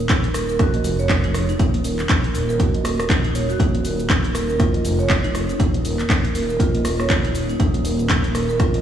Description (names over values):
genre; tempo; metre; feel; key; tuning
afro house; 120 BPM; 4/4; swing 58% on 16ths; Eb minor; A4 = 440 Hz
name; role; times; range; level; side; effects
dark detuned saw bass; bass; 0.0-8.8 s; Eb1 to F1; -24 LUFS; equal; sidechain pumping
marimba with medium mallets; arpeggios; 0.1-8.8 s; Eb4 to Eb5; -24 LUFS; right 2 dB; sidechain pumping, tape echo
electronic kick drum; drums; 0.1-8.7 s; none; -20 LUFS; equal; none
house drum kit; drums; 0.1-8.8 s; handclaps, hi-hat, rim click, shaker; -26 LUFS; equal; none
room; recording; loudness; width
light reverb; played on a big sound system in a bare room, large studio reverb; -17 LUFS; side -10 dB against mid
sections
0.0-8.8 A section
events
none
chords
0.0 Ebsus2; 3.6 Bb5/Eb